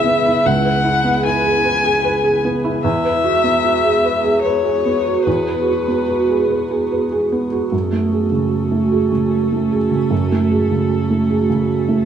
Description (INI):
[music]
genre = neoclassical piano and strings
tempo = 76 BPM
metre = 3/4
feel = rubato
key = unclear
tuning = A4 = 440 Hz
[part]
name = muted violin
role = melody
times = 0.0-12.1 s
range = A4 to G#5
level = -20 LUFS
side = left 3 dB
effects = tape echo
[part]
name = felt-muted upright piano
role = accompaniment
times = 0.0-12.1 s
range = C#2 to B4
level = -17 LUFS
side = right 2 dB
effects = none
[part]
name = granular cloud pad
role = sustained chords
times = 0.0-12.1 s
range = A3 to G#5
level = -23 LUFS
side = right 1 dB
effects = built-in reverb
[sound]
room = moderate large studio reverb, RT60 0.9 s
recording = studio ambience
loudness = -14 LUFS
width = side -9 dB against mid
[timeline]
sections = 0.0-7.7 A section; 7.7-12.1 B section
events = none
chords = 0.0 C#m7; 2.8 Eadd9; 7.7 F#madd9